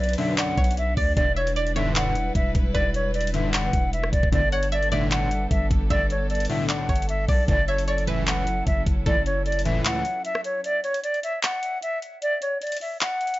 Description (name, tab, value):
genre	hip hop, trap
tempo	152 BPM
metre	4/4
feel	half-time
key	unclear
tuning	A4 = 442 Hz
part	concert flute	melody	0.0-13.4 s	C#5 to F#5	-26 LUFS	equal	digital delay
part	string-like resonator pluck	second line	0.0-10.2 s	A4 to F#5	-34 LUFS	right 1 dB	chorus, phaser, digital delay
part	dark chamber string section	sustained chords	0.0-10.6 s	F#3 to B4	-33 LUFS	equal	none
part	long sustained 808-style bass	bass	0.0-9.8 s	E1 to D2	-26 LUFS	equal	none
part	trap drum kit	drums	0.0-13.4 s	handclaps, hi-hat, kick drum, rim click	-25 LUFS	equal	none
part	big bright polysynth	stabs	0.2-10.0 s	B1 to E3	-28 LUFS	left 1 dB	chorus
room	little or no reverb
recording	nothing above 7.6 kHz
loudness	-21 LUFS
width	side -17 dB against mid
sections	0.0-10.6 A section; 10.6-13.4 B section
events	break 9.9-10.6, 10.6-13.4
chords	0.0 Bm; 1.2 Em7; 4.3 Gadd9; 7.5 F#m7; 10.6 N.C.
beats	0.38 0.77 | 1.17 1.56 1.96 2.35 | 2.75 3.14 3.54 3.93 | 4.33 4.72 5.12 5.51 | 5.90 6.30 6.69 7.09 | 7.48 7.88 8.27 8.67 | 9.06 9.46 9.85 10.25 | 10.64 11.04 11.43 11.82 | 12.22 12.62 13.01